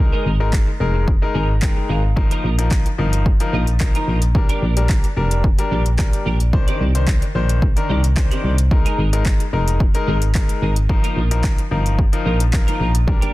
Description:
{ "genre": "dance-pop", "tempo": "110 BPM", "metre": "4/4", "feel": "straight", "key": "unclear", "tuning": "A4 = 440 Hz", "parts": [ { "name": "clear grand piano", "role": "accompaniment", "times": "0.0-13.3 s", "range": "Eb3 to Bb5", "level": "-24 LUFS", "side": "left 4 dB", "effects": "sidechain pumping" }, { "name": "twelve-string electric guitar", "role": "riff", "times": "0.0-13.3 s", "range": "Ab3 to D5", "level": "-29 LUFS", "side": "right 5 dB", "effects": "ensemble chorus" }, { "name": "solid FM bass", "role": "bass", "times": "0.0-13.2 s", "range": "F1 to C2", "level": "-18 LUFS", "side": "equal", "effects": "sidechain pumping" }, { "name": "house drum kit", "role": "drums", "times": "0.5-13.3 s", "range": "handclaps, hi-hat, kick drum", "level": "-18 LUFS", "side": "equal", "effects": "none" } ], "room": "little or no reverb", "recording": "dense, heavily limited modern master", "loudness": "-15 LUFS", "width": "side -18 dB against mid", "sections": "0.0-13.3 A section", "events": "grand piano fill 1.1-2.2", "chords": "0.0 Absus2; 2.2 Bbsus4; 4.3 Gm; 6.5 Cmadd9; 8.7 Absus2; 10.9 Bbsus4" }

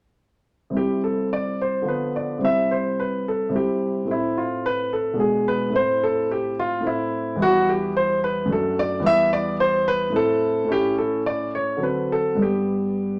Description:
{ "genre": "classical, baroque-style suite movement for grand piano", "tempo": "108 BPM", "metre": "3/4", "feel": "rubato", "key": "C major", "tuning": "A4 = 442 Hz", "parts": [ { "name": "warm concert grand piano", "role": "solo", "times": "0.7-13.2 s", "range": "E2 to E5", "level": "-22 LUFS", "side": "equal", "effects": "none" } ], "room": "moderate large studio reverb, RT60 0.9 s", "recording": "none", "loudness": "-22 LUFS", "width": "mono", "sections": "0.8-13.2 A section", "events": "none", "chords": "0.8 C; 1.9 Bdim/D; 2.4 C; 4.1 Am; 5.2 G#dim/B; 5.7 Am; 7.4 Em; 8.5 D/F#; 9.0 Em; 10.2 Am; 10.7 A; 11.8 D7; 12.4 G" }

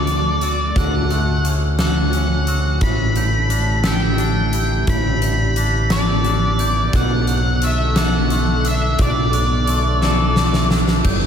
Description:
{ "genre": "post-rock", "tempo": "58 BPM (dotted quarters)", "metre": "6/8", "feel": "straight", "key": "unclear", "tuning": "A4 = 435 Hz", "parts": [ { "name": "octave-fuzz lead guitar", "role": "melody", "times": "0.0-10.7 s", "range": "D5 to B5", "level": "-22 LUFS", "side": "left 1 dB", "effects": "distortion, slapback echo, digital delay" }, { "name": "airy breathy pad", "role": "sustained chords", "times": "0.0-11.3 s", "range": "D3 to A4", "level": "-27 LUFS", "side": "equal", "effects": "chorus" }, { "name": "glockenspiel with hard plastic mallets", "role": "arpeggios", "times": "0.0-11.3 s", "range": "D6 to G6", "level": "-32 LUFS", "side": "right 5 dB", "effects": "slapback echo, digital delay" }, { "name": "twangy electric guitar", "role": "arpeggios", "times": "0.0-11.3 s", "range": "A2 to A4", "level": "-27 LUFS", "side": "left 2 dB", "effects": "lush chorus, slapback echo, digital delay" }, { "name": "growling fingered electric bass", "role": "bass", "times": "0.0-11.3 s", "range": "G1 to D2", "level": "-19 LUFS", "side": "equal", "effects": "overdrive" }, { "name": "huge arena drum kit", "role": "drums", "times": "0.1-11.2 s", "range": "crash cymbal, hi-hat, kick drum, snare drum", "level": "-20 LUFS", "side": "equal", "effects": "none" } ], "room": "light reverb, small room ambience", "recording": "none", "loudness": "-15 LUFS", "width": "side -8 dB against mid", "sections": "0.0-11.1 A section", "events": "drum fill 10.0-11.1", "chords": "0.0 Dmaj7; 2.8 A7sus4; 6.9 Bm7" }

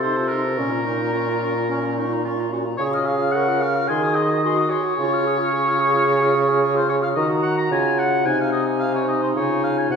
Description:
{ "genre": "quick classical-period movement for wind quintet", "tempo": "110 BPM", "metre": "4/4", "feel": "straight", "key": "unclear", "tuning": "A4 = 440 Hz", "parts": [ { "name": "concert flute", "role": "melody", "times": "0.0-10.0 s", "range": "Ab5 to F6", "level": "-29 LUFS", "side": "left 6 dB", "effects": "none" }, { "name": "warm oboe", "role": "second line", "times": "0.0-10.0 s", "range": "Bb4 to Bb5", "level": "-22 LUFS", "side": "left 1 dB", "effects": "none" }, { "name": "warm French horn", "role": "accompaniment", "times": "0.0-10.0 s", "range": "Db4 to Ab4", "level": "-28 LUFS", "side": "left 2 dB", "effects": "none" }, { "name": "warm clarinet", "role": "accompaniment", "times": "0.0-10.0 s", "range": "Db4 to Bb4", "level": "-25 LUFS", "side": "right 2 dB", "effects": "none" }, { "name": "mellow bassoon", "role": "bass", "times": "0.0-10.0 s", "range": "Bb2 to Eb3", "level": "-23 LUFS", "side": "right 2 dB", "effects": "none" } ], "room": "wet recital hall reverb, RT60 1.4 s", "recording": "heard from further back in the room", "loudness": "-18 LUFS", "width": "side -6 dB against mid", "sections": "0.0-10.0 A section", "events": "none", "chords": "0.0 F7/C; 0.6 Bbm; 2.8 Db; 3.9 Ab7/Eb; 5.0 Db; 7.2 Ebm; 8.3 Ab/C; 9.3 Db" }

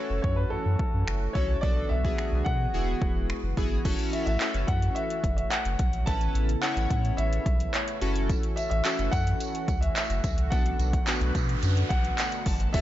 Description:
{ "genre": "dance-pop", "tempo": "108 BPM", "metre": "4/4", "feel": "straight", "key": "F# minor", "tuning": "A4 = 440 Hz", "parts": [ { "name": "warm concert grand piano", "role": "melody", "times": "0.0-12.8 s", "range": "A4 to A5", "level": "-33 LUFS", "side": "left 2 dB", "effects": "none" }, { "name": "chorused retro synth keys", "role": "accompaniment", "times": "0.0-12.8 s", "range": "A3 to A5", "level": "-34 LUFS", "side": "left 1 dB", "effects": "sidechain pumping" }, { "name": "sweeping resonant pad", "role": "sustained chords", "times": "0.0-12.8 s", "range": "C#3 to F#4", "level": "-38 LUFS", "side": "right 2 dB", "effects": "chorus, sidechain pumping" }, { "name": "warm sub bass", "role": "bass", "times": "0.1-12.8 s", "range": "E1 to B2", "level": "-28 LUFS", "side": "equal", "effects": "sidechain pumping" }, { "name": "deep house drum kit", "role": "drums", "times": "0.2-12.8 s", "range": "crash cymbal, finger snaps, handclaps, hi-hat, kick drum", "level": "-28 LUFS", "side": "equal", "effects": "overdrive" }, { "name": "tambourine", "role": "percussion", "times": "8.3-12.8 s", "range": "none", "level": "-43 LUFS", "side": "right 10 dB", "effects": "none" }, { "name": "noise sweep and impact", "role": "sound effects", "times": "10.8-12.8 s", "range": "none", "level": "-37 LUFS", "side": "right 1 dB", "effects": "none" } ], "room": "digital ambience", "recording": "nothing above 7.7 kHz", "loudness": "-24 LUFS", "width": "side -13 dB against mid", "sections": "0.0-3.9 A section; 3.9-12.7 B section", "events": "noise sweep 10.8-12.7; synth keys fill 11.9-12.7", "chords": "0.0 F#m7; 1.6 Bm7; 2.7 Eadd9; 3.9 F#m7; 6.1 Aadd9; 8.0 F#m7; 10.5 Bm7" }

